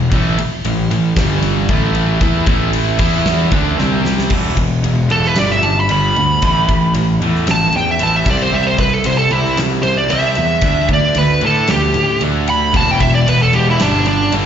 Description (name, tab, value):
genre	hard rock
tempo	114 BPM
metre	4/4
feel	straight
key	E minor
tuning	A4 = 440 Hz
part	overdriven semi-hollow guitar	riff	0.0-14.5 s	E2 to E4	-22 LUFS	right 11 dB	slapback echo
part	scooped high-gain guitar	riff	0.0-14.5 s	E2 to E4	-22 LUFS	left 9 dB	distortion
part	sludgy distorted guitar	riff	0.0-4.3, 12.7-14.5 s	E2 to E4	-22 LUFS	equal	overdrive, slapback echo
part	fuzz picked electric bass	bass	0.0-14.5 s	E1 to A2	-17 LUFS	equal	overdrive
part	huge arena drum kit	drums	0.1-14.4 s	crash cymbal, kick drum, ride cymbal, snare drum	-20 LUFS	equal	none
part	smooth overdriven lead guitar	melody	5.1-14.3 s	D4 to B5	-15 LUFS	right 2 dB	plate reverb, slapback echo, digital delay
room	light reverb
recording	live gig heard through the venue's PA, recital hall reverb, nothing above 7.6 kHz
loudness	-12 LUFS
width	side -8 dB against mid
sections	0.0-4.3 A section; 4.3-14.5 B section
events	drum fill 3.8-4.3; lead electric guitar solo 4.3-14.5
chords	0.1 A5; 1.2 G5; 1.7 A5; 3.0 E5; 3.5 D5; 3.8 C5; 4.3 E5; 5.4 G; 6.4 A5; 8.3 C; 10.6 Dsus4; 12.7 E5; 13.8 G5